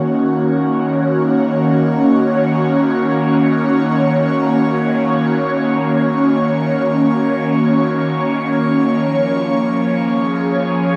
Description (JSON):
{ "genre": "ambient", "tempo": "free time", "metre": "none", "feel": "none", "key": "Eb minor", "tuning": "A4 = 440 Hz", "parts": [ { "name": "airy breathy pad", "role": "solo", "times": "0.0-11.0 s", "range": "Eb3 to Db5", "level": "-16 LUFS", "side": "equal", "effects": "chorus, phaser, diffuse ambient delay" } ], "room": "wet huge ambient reverb, RT60 7.1 s", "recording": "none", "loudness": "-16 LUFS", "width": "mono", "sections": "0.0-11.0 A section", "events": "none", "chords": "0.0 Ebm7; 9.0 Bbm7", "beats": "free time" }